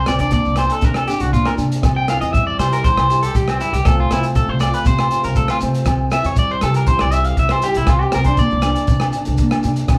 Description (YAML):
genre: highlife guitar band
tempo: 119 BPM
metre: 4/4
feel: straight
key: unclear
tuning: A4 = 439 Hz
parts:
  - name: fingerpicked acoustic archtop guitar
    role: accompaniment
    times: 0.0-10.0 s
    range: C3 to G4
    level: -26 LUFS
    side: equal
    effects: none
  - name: electric guitar at the edge of break-up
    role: arpeggios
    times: 0.0-9.7 s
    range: C4 to G5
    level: -22 LUFS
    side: equal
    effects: none
  - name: upright bass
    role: bass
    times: 0.0-10.0 s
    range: C2 to C3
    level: -23 LUFS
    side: equal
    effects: none
  - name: crunchy breakbeat drum kit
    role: drums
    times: 0.1-10.0 s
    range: hi-hat, kick drum, rim click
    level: -23 LUFS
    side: equal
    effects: none
  - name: agogo bells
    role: percussion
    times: 0.1-10.0 s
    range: none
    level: -28 LUFS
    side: equal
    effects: none
  - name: shekere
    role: percussion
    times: 0.1-10.0 s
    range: none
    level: -28 LUFS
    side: equal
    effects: none
room: moderate large studio reverb, RT60 1.1 s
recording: band playing live in one room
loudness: -17 LUFS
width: mono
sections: 0.0-9.9 A section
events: clean electric guitar solo 0.0-9.9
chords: 0.0 Bb/C; 1.8 C; 3.9 F/C; 5.9 C; 7.9 Bb/C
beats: 0.34 0.84 1.35 | 1.85 2.35 2.85 3.36 | 3.86 4.36 4.87 5.37 | 5.87 6.38 6.88 7.38 | 7.88 8.39 8.89 9.39 | 9.89